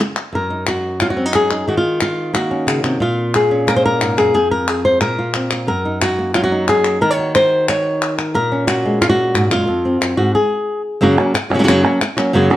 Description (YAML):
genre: flamenco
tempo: 180 BPM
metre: 4/4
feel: straight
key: unclear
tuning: A4 = 444 Hz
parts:
  - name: flamenco guitar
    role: melody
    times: 0.0-12.6 s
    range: F2 to Db5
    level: -14 LUFS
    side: equal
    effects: none
  - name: palmas hand claps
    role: percussion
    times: 0.2-12.6 s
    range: none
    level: -21 LUFS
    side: left 2 dB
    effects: none
room: moderate stone room reverb, RT60 1.0 s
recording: dark, warm production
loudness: -14 LUFS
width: side -13 dB against mid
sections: 0.3-11.0 A section; 11.0-12.6 B section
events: stop 10.3-11.0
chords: 0.3 Gb6; 1.7 Ebm7; 3.0 Bbm7; 4.3 Fsus4; 5.7 Gb6; 7.0 Ebm7; 8.3 Bbm7; 9.7 F5; 10.3 N.C.; 11.0 Gb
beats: 0.00 | 0.33 0.67 1.00 1.34 | 1.67 2.01 2.34 2.67 | 3.01 3.34 3.68 4.01 | 4.34 4.68 5.01 5.35 | 5.68 6.01 6.35 6.68 | 7.01 7.35 7.68 8.02 | 8.35 8.68 9.02 9.35 | 9.68 10.02 10.35 10.68 | 11.01 11.34 11.68 12.01 | 12.34